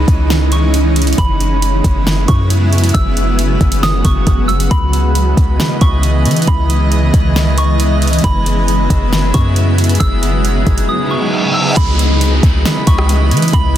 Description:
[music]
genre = hip hop, atmospheric cloud-rap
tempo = 136 BPM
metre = 4/4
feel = half-time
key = C# minor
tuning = A4 = 439 Hz
[part]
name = soft synth bell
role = melody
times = 0.0-13.8 s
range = B5 to E6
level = -22 LUFS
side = right 1 dB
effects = chorus, phaser, tape echo
[part]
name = granular cloud pad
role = sustained chords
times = 0.0-13.8 s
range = C#3 to D#5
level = -17 LUFS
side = right 1 dB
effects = built-in reverb, sidechain pumping
[part]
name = warm 808-style bass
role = bass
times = 0.0-13.8 s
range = F#1 to E3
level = -13 LUFS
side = equal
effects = none
[part]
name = smooth R&B drum kit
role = drums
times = 0.1-13.6 s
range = hi-hat, kick drum, rim click, snare drum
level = -16 LUFS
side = equal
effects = none
[part]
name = drifting glass-harmonics texture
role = texture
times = 5.3-13.8 s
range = D#4 to A#6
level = -24 LUFS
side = left 2 dB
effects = chorus, built-in reverb
[part]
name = reverse cymbal and downlifter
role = sound effects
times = 11.1-13.8 s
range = none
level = -19 LUFS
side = equal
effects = none
[sound]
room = little or no reverb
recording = dense, heavily limited modern master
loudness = -10 LUFS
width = side -11 dB against mid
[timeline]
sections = 0.0-11.8 A section; 11.8-13.8 B section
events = reverse cymbal 11.1-11.8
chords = 0.0 C#m9; 1.2 F#9sus4; 4.7 C#m9; 8.2 F#9sus4; 11.8 C#m9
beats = 0.30 0.74 | 1.18 1.62 2.06 2.50 | 2.95 3.39 3.83 4.27 | 4.71 5.15 5.59 6.03 | 6.47 6.92 7.36 7.80 | 8.24 8.68 9.12 9.56 | 10.01 10.45 10.89 11.33 | 11.77 12.21 12.65 13.09 | 13.53

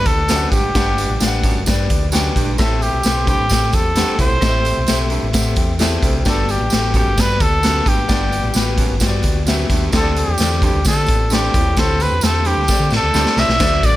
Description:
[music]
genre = uptempo 1960s-style soul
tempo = 131 BPM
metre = 4/4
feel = straight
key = G major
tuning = A4 = 442 Hz
[part]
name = warm trumpet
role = melody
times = 0.0-14.0 s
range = G4 to E5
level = -20 LUFS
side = equal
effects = tape echo
[part]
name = warm concert grand piano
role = accompaniment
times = 0.0-14.0 s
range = G2 to A5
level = -24 LUFS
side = left 5 dB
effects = none
[part]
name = fingered electric bass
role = bass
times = 0.0-14.0 s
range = G1 to D3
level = -20 LUFS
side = equal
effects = none
[part]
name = raw garage drum kit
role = drums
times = 0.1-13.9 s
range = crash cymbal, hi-hat, kick drum, snare drum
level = -17 LUFS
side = equal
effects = none
[part]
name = tambourine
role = percussion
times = 0.1-13.9 s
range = none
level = -29 LUFS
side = right 4 dB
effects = none
[part]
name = warm baritone saxophone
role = riff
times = 0.3-13.8 s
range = D2 to A2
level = -25 LUFS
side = right 4 dB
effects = none
[part]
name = tonewheel organ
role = sustained chords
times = 13.6-14.0 s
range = F#3 to D4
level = -30 LUFS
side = right 1 dB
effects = none
[sound]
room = light reverb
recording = none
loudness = -14 LUFS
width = side -15 dB against mid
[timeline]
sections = 0.0-13.6 A section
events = grand piano fill 4.9-6.3; drum fill 12.7-13.6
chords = 0.0 Gmaj7; 2.6 Am7; 6.3 Gmaj7; 9.9 D7sus4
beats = 0.29 | 0.75 1.21 1.67 2.12 | 2.58 3.04 3.50 3.96 | 4.42 4.88 5.34 5.80 | 6.26 6.72 7.17 7.63 | 8.09 8.55 9.01 9.47 | 9.93 10.39 10.85 11.31 | 11.77 12.23 12.69 13.14 | 13.60

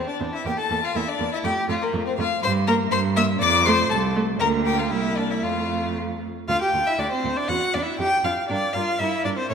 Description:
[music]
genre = quick classical-period movement for string quartet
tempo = 120 BPM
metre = 2/4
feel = rubato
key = F major, D minor from 6.5 s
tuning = A4 = 435 Hz
[part]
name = rich violin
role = melody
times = 0.0-9.5 s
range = A3 to E6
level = -26 LUFS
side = left 7 dB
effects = none
[part]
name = clear violin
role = second line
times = 0.0-9.5 s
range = Bb3 to G5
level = -25 LUFS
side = left 1 dB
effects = none
[part]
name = clear viola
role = accompaniment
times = 0.0-9.5 s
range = A3 to G4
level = -27 LUFS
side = right 3 dB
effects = none
[part]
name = clear cello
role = bass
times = 0.0-9.5 s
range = C2 to A2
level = -27 LUFS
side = right 4 dB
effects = none
[sound]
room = wet concert hall reverb, RT60 2.1 s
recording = none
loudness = -20 LUFS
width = side -6 dB against mid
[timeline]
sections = 0.0-6.5 A section; 6.5-9.5 B section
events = none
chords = 0.5 Gm13/E (rootless); 1.4 F; 2.4 Gmadd11; 3.4 F; 4.4 Bb/D; 4.9 C7; 5.4 F; 6.5 D5; 7.5 Dmaj9/E; 8.0 Dm/F; 8.5 Gm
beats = | 0.45 0.95 | 1.44 1.94 | 2.42 2.92 | 3.41 3.90 | 4.40 4.91 | 5.43 5.96 | 6.48 6.99 | 7.49 7.99 | 8.49 8.99 | 9.49

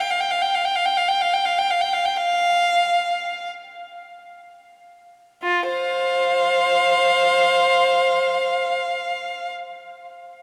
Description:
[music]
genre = classical, free, expressive piece for unaccompanied violin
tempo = 26-43 BPM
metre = 4/4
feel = rubato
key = unclear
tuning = A4 = 441 Hz
[part]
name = rich violin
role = solo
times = 0.0-9.5 s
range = F4 to G5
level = -21 LUFS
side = equal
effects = none
[sound]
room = wet cathedral reverb, RT60 5.0 s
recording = none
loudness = -20 LUFS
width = mono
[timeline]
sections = 0.0-5.4 A section; 5.4-10.4 B section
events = slowing down 0.0-5.4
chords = none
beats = 0.42 1.92 3.50 | 5.44 7.02 8.56

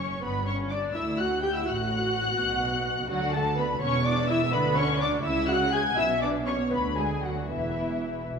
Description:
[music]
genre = quick classical-period movement for string orchestra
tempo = 83 BPM (dotted quarters)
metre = 6/8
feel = rubato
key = unclear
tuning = A4 = 440 Hz
[part]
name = muted studio violin section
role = melody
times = 0.0-8.2 s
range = E5 to G#6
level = -30 LUFS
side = left 3 dB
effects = none
[part]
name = muted symphonic violin section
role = second line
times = 0.0-8.3 s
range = E4 to G#5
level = -31 LUFS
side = left 2 dB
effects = none
[part]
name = muted symphonic viola section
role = accompaniment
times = 0.0-8.3 s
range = E3 to G#4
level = -31 LUFS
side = equal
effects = none
[part]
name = muted symphonic cello section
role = bass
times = 0.0-8.4 s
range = D2 to D3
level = -32 LUFS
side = right 2 dB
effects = none
[part]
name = muted symphonic double bass section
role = bass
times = 0.0-8.4 s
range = E1 to D2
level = -33 LUFS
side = right 4 dB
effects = none
[sound]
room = wet scoring stage reverb, RT60 1.6 s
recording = minimal, uncompressed stereo recording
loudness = -24 LUFS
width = side -6 dB against mid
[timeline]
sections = 0.0-8.4 A section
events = none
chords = 0.2 G5; 1.7 F#m/A; 2.4 B5; 3.1 D6; 3.8 C#m/E; 4.5 Bmadd9/D; 5.2 C#madd11; 6.0 Bmadd9; 6.7 Bm6/D; 7.5 E5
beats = | 0.23 0.94 | 1.66 2.38 | 3.10 3.81 | 4.52 5.24 | 5.97 6.71 | 7.49 8.27

